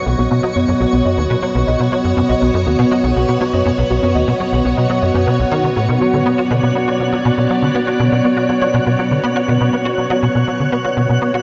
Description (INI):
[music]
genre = ambient, sequencer-driven space music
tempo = 121 BPM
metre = 4/4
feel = straight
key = B minor from 5.9 s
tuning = A4 = 441 Hz
[part]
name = string machine, full ensemble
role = sustained chords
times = 0.0-11.4 s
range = B3 to E5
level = -19 LUFS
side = equal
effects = ensemble chorus, shimmer reverb
[part]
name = soft round pluck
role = arpeggios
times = 0.0-5.9 s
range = B3 to F#5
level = -24 LUFS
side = equal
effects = chorus, analog delay, shimmer reverb
[part]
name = twinkling granular texture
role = texture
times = 0.0-11.4 s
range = C#5 to F#6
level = -30 LUFS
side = equal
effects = built-in reverb, shimmer reverb
[part]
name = tight sequencer bass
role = riff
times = 0.1-11.4 s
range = B1 to F#4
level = -19 LUFS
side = equal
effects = ensemble chorus, vintage 12-bit sampler grit, analog delay, shimmer reverb
[sound]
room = wet huge ambient reverb, RT60 7.5 s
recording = nothing above 7.8 kHz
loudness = -16 LUFS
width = mono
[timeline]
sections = 0.0-5.9 A section; 5.9-11.4 B section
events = none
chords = 0.0 B; 5.9 Bmadd9